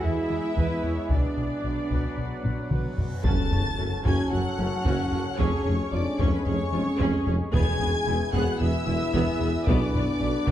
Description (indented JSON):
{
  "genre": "cinematic, hybrid orchestral and electronic film score",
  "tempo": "112 BPM",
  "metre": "4/4",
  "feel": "straight",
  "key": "F# minor",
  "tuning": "A4 = 440 Hz",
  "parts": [
    { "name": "rich studio violin section", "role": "melody", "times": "0.0-10.5 s", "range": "F#4 to A6", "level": "-37 LUFS", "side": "left 3 dB", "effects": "none" },
    { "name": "clear symphonic violin section", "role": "second line", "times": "0.0-10.5 s", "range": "B4 to A5", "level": "-35 LUFS", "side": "left 2 dB", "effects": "none" },
    { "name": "clear symphonic viola section", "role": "accompaniment", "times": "0.0-10.5 s", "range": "F#3 to D5", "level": "-32 LUFS", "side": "equal", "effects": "none" },
    { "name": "analog drone", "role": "sustained chords", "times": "0.0-10.5 s", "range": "F#3 to F#5", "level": "-34 LUFS", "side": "equal", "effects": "chorus" },
    { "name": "warm French horn section", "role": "sustained chords", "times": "0.0-10.5 s", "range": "F#3 to A4", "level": "-33 LUFS", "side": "left 2 dB", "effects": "none" },
    { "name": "rubbery square bass", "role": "riff", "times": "0.0-10.5 s", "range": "E2 to B3", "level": "-31 LUFS", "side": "left 2 dB", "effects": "none" },
    { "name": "rich chamber cello section", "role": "bass", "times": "0.0-10.5 s", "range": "E2 to E4", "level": "-33 LUFS", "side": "right 2 dB", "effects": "none" },
    { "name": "rich symphonic double bass section", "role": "bass", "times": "0.0-10.5 s", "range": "E1 to E2", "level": "-32 LUFS", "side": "right 3 dB", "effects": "none" },
    { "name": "taiko ensemble", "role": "drums", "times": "0.6-10.5 s", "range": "none", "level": "-29 LUFS", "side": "equal", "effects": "none" },
    { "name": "reverse cymbal and impact", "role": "sound effects", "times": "3.2-5.4 s", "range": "none", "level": "-31 LUFS", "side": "equal", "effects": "none" },
    { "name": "mellow tuba", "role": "bass", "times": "3.2-10.5 s", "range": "E1 to B1", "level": "-32 LUFS", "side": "right 2 dB", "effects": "none" }
  ],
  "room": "wet recital hall reverb, RT60 1.4 s",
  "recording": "dark, warm production",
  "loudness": "-23 LUFS",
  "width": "side -12 dB against mid",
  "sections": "0.0-3.2 A section; 3.2-10.5 A section",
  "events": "drum fill 2.4-3.2; reverse cymbal 3.2; impact 3.2-5.4",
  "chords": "0.0 E; 1.1 Bm; 3.2 F#m; 5.4 C#/E#; 7.5 E; 9.7 Bm",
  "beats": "0.03 0.57 | 1.10 1.64 2.18 2.71 | 3.25 3.78 4.32 4.86 | 5.39 5.93 6.46 7.00 | 7.53 8.07 8.61 9.14 | 9.68 10.21"
}